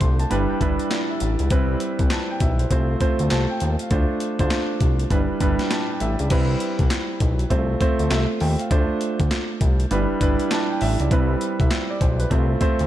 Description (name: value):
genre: R&B, new jack swing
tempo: 100 BPM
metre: 4/4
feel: swing 62% on 16ths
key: C major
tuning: A4 = 440 Hz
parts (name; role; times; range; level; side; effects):
- warm baby grand piano; accompaniment; 0.0-12.9 s; G3 to C6; -23 LUFS; right 2 dB; none
- fat analog bass; bass; 0.0-12.9 s; G1 to Eb2; -22 LUFS; equal; none
- breakbeat sampler-style drum kit; drums; 0.0-12.9 s; crash cymbal, handclaps, hi-hat, kick drum, snare drum; -23 LUFS; equal; none
room: light reverb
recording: dark, warm production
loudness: -19 LUFS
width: side -13 dB against mid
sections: 0.0-6.3 A section; 6.3-12.9 B section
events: grand piano fill 0.0-1.5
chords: 0.3 G6; 1.5 Cmaj7; 2.7 F/C; 3.9 Dm7; 5.1 G6; 6.3 Cmaj7; 7.5 F/C; 8.7 Dm7; 9.9 G6; 11.1 Cmaj7; 12.3 F/C